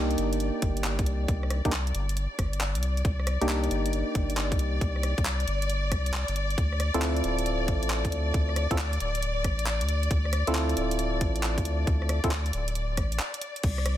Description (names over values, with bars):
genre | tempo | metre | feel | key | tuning
UK garage, two-step garage | 136 BPM | 4/4 | swing 66% on 16ths | unclear | A4 = 438 Hz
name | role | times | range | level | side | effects
dark studio violin section | sustained chords | 0.0-14.0 s | D5 | -34 LUFS | left 3 dB | sidechain pumping
percussive organ stab | stabs | 0.0-12.3 s | Bb3 to A4 | -31 LUFS | right 1 dB | chorus, ping-pong delay
saturated sub bass | bass | 0.0-14.0 s | D1 to D2 | -28 LUFS | equal | none
garage drum kit | drums | 0.1-14.0 s | crash cymbal, handclaps, hi-hat, rim click | -34 LUFS | equal | overdrive, studio reverb
electronic kick drum | drums | 0.6-13.8 s | none | -28 LUFS | equal | overdrive, studio reverb
room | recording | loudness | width
digital ambience | none | -25 LUFS | side -12 dB against mid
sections
0.0-14.0 A section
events
break 13.2-13.6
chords
0.0 Cm9; 6.6 Dm9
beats
0.40 0.84 | 1.28 1.73 2.17 2.61 | 3.05 3.49 3.93 4.37 | 4.81 5.25 5.70 6.14 | 6.58 7.02 7.46 7.90 | 8.34 8.79 9.23 9.67 | 10.11 10.55 10.99 11.43 | 11.87 12.31 12.76 13.20 | 13.64